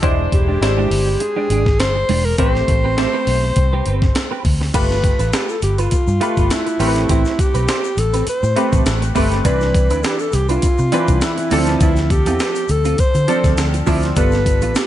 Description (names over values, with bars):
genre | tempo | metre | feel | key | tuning
polished 1980s jazz-funk pop | 102 BPM | 4/4 | swing 54% on 16ths | unclear | A4 = 440 Hz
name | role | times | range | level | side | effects
clear baby grand piano | accompaniment | 0.0-14.9 s | E3 to B#4 | -22 LUFS | equal | analog chorus
clean electric guitar | riff | 0.0-14.9 s | G#3 to C5 | -25 LUFS | right 6 dB | ensemble chorus
vintage muted fingered electric bass | bass | 0.0-14.7 s | E1 to D3 | -19 LUFS | equal | none
breakbeat sampler-style drum kit | drums | 0.0-14.9 s | crash cymbal, hi-hat, kick drum, snare drum | -19 LUFS | equal | gated reverb
breathy alto saxophone | melody | 0.3-14.9 s | E4 to C5 | -20 LUFS | equal | none
egg shaker | percussion | 4.7-14.9 s | none | -36 LUFS | left 9 dB | none
room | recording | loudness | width
studio reverb | nothing above 11.0 kHz | -14 LUFS | side -12 dB against mid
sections
0.0-4.7 A section; 4.7-14.9 B section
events
none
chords
0.0 E7alt; 2.4 Am9; 4.7 G9; 6.8 Am9; 9.5 Cmaj9; 11.5 Dm7; 14.2 G9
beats
| 0.03 0.62 1.21 1.80 | 2.39 2.98 3.56 4.15 | 4.74 5.33 5.92 6.51 | 7.10 7.69 8.28 8.86 | 9.45 10.04 10.63 11.22 | 11.81 12.40 12.99 13.58 | 14.17 14.76